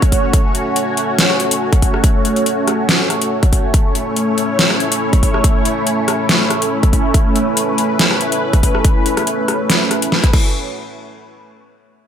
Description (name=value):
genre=heavy wobble dubstep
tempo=141 BPM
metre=4/4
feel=swing 54% on 16ths, half-time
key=unclear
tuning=A4 = 440 Hz
part: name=lush unison pad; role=sustained chords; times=0.0-10.5 s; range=A3 to C#5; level=-17 LUFS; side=equal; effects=chorus, phaser, vintage 12-bit sampler grit, sidechain pumping
part: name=dubstep drum kit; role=drums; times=0.0-10.4 s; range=crash cymbal, hi-hat, rim click, snare drum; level=-17 LUFS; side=equal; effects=overdrive
part: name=electronic kick drum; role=drums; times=0.0-10.4 s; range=none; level=-13 LUFS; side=equal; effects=overdrive
room=light reverb, digital ambience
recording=none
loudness=-13 LUFS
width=side -8 dB against mid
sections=0.0-10.5 A section; 10.5-12.1 B section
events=none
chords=0.0 F#m; 3.7 A; 10.3 F#m; 10.5 N.C.